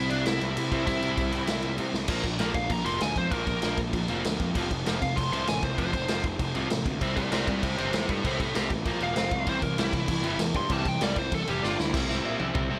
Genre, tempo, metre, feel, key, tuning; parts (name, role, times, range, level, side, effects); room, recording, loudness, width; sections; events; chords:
punk rock; 195 BPM; 4/4; straight; A4 = 442 Hz
smooth overdriven lead guitar; melody; 0.0-11.9 s; D4 to C6; -34 LUFS; equal; delay
overdriven electric guitar; riff; 0.0-12.8 s; F2 to G4; -34 LUFS; equal
fuzz picked electric bass; bass; 0.0-12.8 s; E1 to C3; -35 LUFS; equal; overdrive
raw garage drum kit; drums; 0.1-12.6 s; crash cymbal, kick drum, snare drum, toms; -32 LUFS; equal
little or no reverb; -28 LUFS; mono
0.0-2.1 A section; 2.1-11.9 B section
half time 0.0-2.1; drum fill 1.9, 11.6-11.9, 11.9-12.8; lead electric guitar solo 2.1-11.9
0.0 C; 2.1 Bb5; 4.6 F5; 7.0 C; 8.9 Bb5; 9.2 F5; 9.5 C; 11.6 G5; 11.9 C